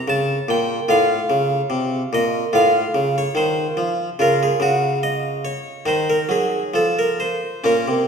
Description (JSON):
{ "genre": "classical, baroque-style suite movement for harpsichord", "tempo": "72 BPM", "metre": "4/4", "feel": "rubato", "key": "unclear", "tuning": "A4 = 436 Hz", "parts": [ { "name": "harpsichord", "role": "solo", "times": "0.0-8.1 s", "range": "A2 to A5", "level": "-17 LUFS", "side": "equal", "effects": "none" } ], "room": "wet recital hall reverb, RT60 1.6 s", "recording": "none", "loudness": "-17 LUFS", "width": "side -6 dB against mid", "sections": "0.0-8.1 A section", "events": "none", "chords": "0.0 Bbm6; 0.9 F/A; 2.5 F7/A; 4.2 Dbadd9; 5.9 Ebm; 6.7 N.C.", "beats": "0.06 | 0.88 1.71 2.54 3.36 | 4.20 5.03 5.87 6.74 | 7.64" }